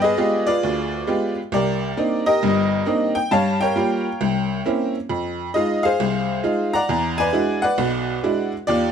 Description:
solo jazz; 134 BPM; 4/4; swing 65% on 8ths; A4 = 440 Hz
tack piano; solo; 0.0-8.9 s; G1 to Bb5; -18 LUFS; equal
light reverb; close, detailed microphones; -18 LUFS; side -7 dB against mid
0.0-8.9 A section
0.0 G7b9; 1.5 Cm9; 3.3 Gm7b5; 4.2 C7b9; 5.1 Fm7; 6.9 E9
0.17 0.62 1.06 | 1.51 1.96 2.40 2.85 | 3.30 3.75 4.20 4.64 | 5.09 5.54 5.99 6.43 | 6.88 7.33 7.78 8.22 | 8.67

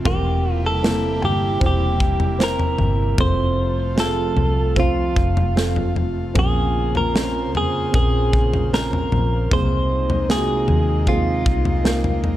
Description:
pop ballad; 76 BPM; 4/4; straight; Bb minor; A4 = 440 Hz
felt-muted upright piano; accompaniment; 0.0-12.4 s; Bb2 to C5; -26 LUFS; right 5 dB
airy breathy pad; sustained chords; 0.0-12.4 s; C3 to C5; -28 LUFS; left 1 dB; chorus
direct-recorded clean electric guitar; melody; 0.1-12.2 s; F4 to C5; -23 LUFS; equal; wide subtle chorus
vintage muted fingered electric bass; bass; 0.1-12.4 s; E1 to F2; -22 LUFS; equal
modern studio drum kit; drums; 0.1-12.4 s; kick drum, snare drum, toms; -22 LUFS; left 1 dB
light reverb, small room ambience; dark, warm production; -17 LUFS; side -14 dB against mid
0.0-12.4 A section
0.1 C7/E; 3.2 F; 6.4 Bbmadd9; 9.5 Abadd9/C
| 0.05 0.83 1.61 2.40 | 3.18 3.97 4.76 5.56 | 6.35 7.14 7.93 8.72 | 9.51 10.29 11.07 11.85

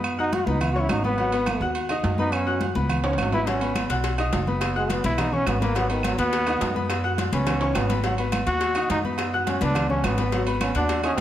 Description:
latin, salsa; 210 BPM; 4/4; straight; G# minor; A4 = 439 Hz
clear baby grand piano; accompaniment; 0.0-11.2 s; F#3 to F#6; -27 LUFS; left 2 dB
upright bass; bass; 0.0-11.2 s; F#1 to F#2; -27 LUFS; equal
agogo bells and timbales; percussion; 0.0-11.2 s; -30 LUFS; right 5 dB
claves; percussion; 0.0-11.2 s; -36 LUFS; right 2 dB
congas; percussion; 0.0-11.2 s; -32 LUFS; left 1 dB
bright trombone; melody; 0.2-11.2 s; D#3 to F#4; -27 LUFS; equal
cowbell; percussion; 3.5-11.2 s; -33 LUFS; left 6 dB
moderate large studio reverb, RT60 1.4 s; -21 LUFS; side -12 dB against mid
0.0-11.2 A section
trombone solo 0.0-11.2; drum fill 3.0-3.5, 7.5-8.0
0.0 F#sus4; 1.2 G#m7; 2.3 F#sus4; 3.5 G#m7; 4.6 F#sus4; 5.8 G#m7; 6.9 F#sus4; 8.0 G#m7; 9.2 F#sus4; 10.3 G#m7
| 0.04 0.33 0.61 0.90 | 1.19 1.47 1.76 2.04 | 2.33 2.61 2.90 3.19 | 3.47 3.76 4.04 4.33 | 4.61 4.90 5.18 5.47 | 5.76 6.04 6.33 6.61 | 6.90 7.19 7.47 7.76 | 8.04 8.33 8.61 8.90 | 9.19 9.47 9.76 10.04 | 10.33 10.61 10.90 11.19

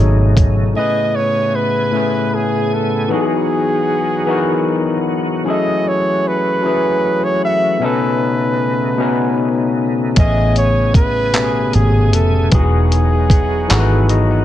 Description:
slow six-eight R&B; 51 BPM (dotted quarters); 6/8; straight; E major; A4 = 439 Hz
overdriven tine electric piano; accompaniment; 0.0-14.4 s; A2 to F#5; -17 LUFS; left 4 dB; wide subtle chorus
bright tonewheel organ; sustained chords; 0.0-14.4 s; C#3 to G#5; -24 LUFS; right 3 dB; chorus vibrato, slow rotary speaker
vintage muted fingered electric bass; bass; 0.0-0.7, 10.2-14.4 s; E1 to A1; -14 LUFS; equal
dusty soul sampler-style drum kit; drums; 0.4-0.6, 10.2-14.3 s; handclaps, hi-hat, kick drum; -14 LUFS; equal; vintage 12-bit sampler grit
breathy flugelhorn; melody; 0.8-14.4 s; G#4 to E5; -19 LUFS; right 1 dB
light reverb; -13 LUFS; side -12 dB against mid
0.8-14.4 A section
tine electric piano fill 13.7-14.4
0.0 B13; 0.8 Amaj9; 3.1 Emaj9; 5.5 F#m9; 7.8 B9; 10.2 Amaj9; 12.5 Emaj9
| 0.76 1.94 | 3.11 4.29 | 5.46 6.64 | 7.82 8.99 | 10.17 11.35 | 12.52 13.70

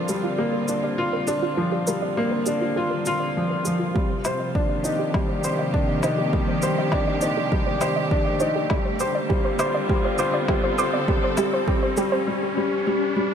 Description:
piano and strings electronica; 101 BPM; 4/4; straight; G minor; A4 = 440 Hz
muted studio string section; sustained chords; 0.0-12.3 s; C3 to A4; -28 LUFS; equal
warm upright piano; riff; 0.0-13.3 s; F3 to C5; -24 LUFS; left 1 dB; ping-pong delay
riser; sound effects; 2.2-13.3 s; -33 LUFS; equal
soft round pluck; arpeggios; 0.1-12.2 s; F4 to D6; -29 LUFS; right 3 dB; chorus, sidechain pumping, ping-pong delay
shaker and woodblock; drums; 0.1-12.1 s; -33 LUFS; left 1 dB; overdrive, studio reverb
electronic kick drum; drums; 4.0-11.8 s; -25 LUFS; right 1 dB; overdrive, studio reverb
moderate huge ambient reverb, RT60 6.9 s; -20 LUFS; side -8 dB against mid
0.0-13.3 A section
build-up 0.0-13.3; filter sweep on synth arpeggio sound 0.0-13.3; riser 2.2-13.3
0.0 Gm7; 4.0 Cmadd9; 8.7 Dm
0.39 0.98 | 1.58 2.17 2.77 3.36 | 3.95 4.55 5.14 5.74 | 6.33 6.92 7.52 8.11 | 8.71 9.30 9.89 10.49 | 11.08 11.68 12.27 12.87

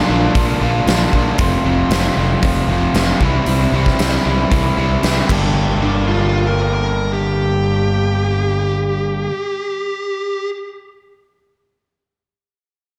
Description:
classic rock; 115 BPM; 4/4; straight; G dorian; A4 = 443 Hz
bluesy overdriven lead guitar; second line; 0.0-0.3, 5.8-10.5 s; D4 to Bb4; -23 LUFS; equal; distortion
overdriven electric guitar; riff; 0.0-9.3 s; F2 to G4; -22 LUFS; equal
overdriven semi-hollow guitar; riff; 0.0-9.3 s; F2 to C4; -24 LUFS; equal
fingered electric bass; bass; 0.1-9.3 s; F1 to C2; -22 LUFS; equal
huge arena drum kit; drums; 0.4-5.4 s; crash cymbal, hi-hat, kick drum, snare drum; -21 LUFS; equal
moderate lush hall reverb, RT60 1.6 s, small room reverb; big arena sound; -17 LUFS; mono
0.0-5.6 A section; 5.6-9.7 B section
0.0 Bb; 1.4 F; 3.2 C; 5.3 Gm
0.35 0.87 | 1.39 1.91 2.43 2.95 | 3.47 3.99 4.51 5.03 | 5.55 6.07 6.59 7.12 | 7.64 8.16 8.68 9.21

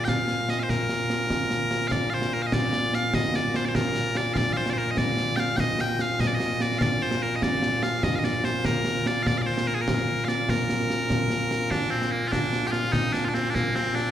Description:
scottish traditional, Scottish pipe music; 98 BPM (dotted quarters); 6/8; straight; Bb major; A4 = 440 Hz
loud bright bagpipes; melody; 0.0-14.1 s; Bb2 to G5; -25 LUFS; left 1 dB; plate reverb, slapback echo, tape echo
concert snare drum and concert bass drum; drums; 0.1-14.1 s; -27 LUFS; right 1 dB
moderate club reverb, RT60 0.5 s; live gig heard through the venue's PA, recital hall reverb; -23 LUFS; side -10 dB against mid
0.0-1.9 A section; 1.9-11.7 B section; 11.7-14.1 B section
0.08 | 0.69 1.30 | 1.92 2.53 | 3.14 3.75 | 4.37 4.98 | 5.59 6.20 | 6.82 7.43 | 8.04 8.65 | 9.26 9.88 | 10.49 11.10 | 11.71 12.32 | 12.94 13.55

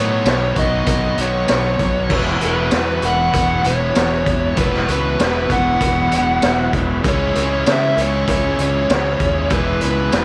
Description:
classic rock; 97 BPM; 4/4; straight; E major; A4 = 440 Hz
fuzz lead guitar; melody; 0.0-10.2 s; B4 to F#5; -22 LUFS; equal; distortion, slapback echo
bright tonewheel organ; sustained chords; 0.0-10.2 s; F#3 to C#5; -34 LUFS; equal
cranked stack guitar; riff; 0.0-10.2 s; E2 to C#4; -28 LUFS; equal
distorted electric guitar; riff; 0.0-10.2 s; B2 to E4; -31 LUFS; equal
distorted electric guitar; riff; 0.0-10.2 s; E2 to F#4; -27 LUFS; equal; distortion
fuzz fingered electric bass; bass; 0.0-10.2 s; E1 to C#3; -24 LUFS; equal; overdrive
raw garage drum kit; drums; 0.3-10.2 s; crash cymbal, hi-hat, kick drum, snare drum, tambourine; -23 LUFS; equal
cowbell; percussion; 0.3-10.2 s; -35 LUFS; equal
moderate plate reverb, RT60 1.7 s, studio reverb; -17 LUFS; mono
0.0-10.2 A section
0.0 Badd9; 2.1 Esus2; 7.0 C#m; 9.5 E
0.26 0.88 1.50 | 2.11 2.73 3.34 3.96 | 4.58 5.20 5.82 6.43 | 7.05 7.67 8.29 8.90 | 9.52 10.13

